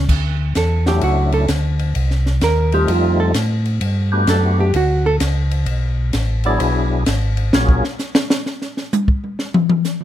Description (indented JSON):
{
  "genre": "soul jazz organ trio",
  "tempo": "129 BPM",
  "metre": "4/4",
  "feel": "swing 66% on 8ths",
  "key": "D major",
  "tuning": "A4 = 440 Hz",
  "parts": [
    { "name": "mellow tonewheel organ", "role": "bass", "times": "0.0-7.8 s", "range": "G#1 to A2", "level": "-17 LUFS", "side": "equal", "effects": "chorus vibrato, slow rotary speaker" },
    { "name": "compact cocktail drum kit", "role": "drums", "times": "0.1-10.0 s", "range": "crash cymbal, hi-hat, kick drum, ride cymbal, snare drum, toms", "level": "-20 LUFS", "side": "left 1 dB", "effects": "none" },
    { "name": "hollow-body jazz guitar", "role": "accompaniment", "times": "0.6-6.8 s", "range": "F4 to D5", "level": "-20 LUFS", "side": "right 3 dB", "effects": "none" },
    { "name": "percussive tonewheel organ", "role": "melody", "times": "0.9-7.8 s", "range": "F#3 to G#4", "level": "-21 LUFS", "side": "left 2 dB", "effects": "slow rotary speaker, overdrive, chorus vibrato" }
  ],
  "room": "light reverb",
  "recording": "close, detailed microphones",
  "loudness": "-15 LUFS",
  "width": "side -12 dB against mid",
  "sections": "0.1-10.0 A section",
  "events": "hollow-body jazz guitar solo 0.1-10.0; drum solo 7.5-10.0",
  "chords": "0.1 Dmaj9; 2.0 Cm; 2.9 F9; 3.8 Gmaj9; 5.7 Bm7; 6.6 E9; 7.5 F#maj7; 9.4 N.C.",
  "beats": "| 0.09 0.55 1.02 1.49 | 1.95 2.42 2.88 3.35 | 3.81 4.28 4.74 5.21 | 5.67 6.14 6.60 7.07 | 7.53 8.00 8.46 8.93 | 9.39 9.85"
}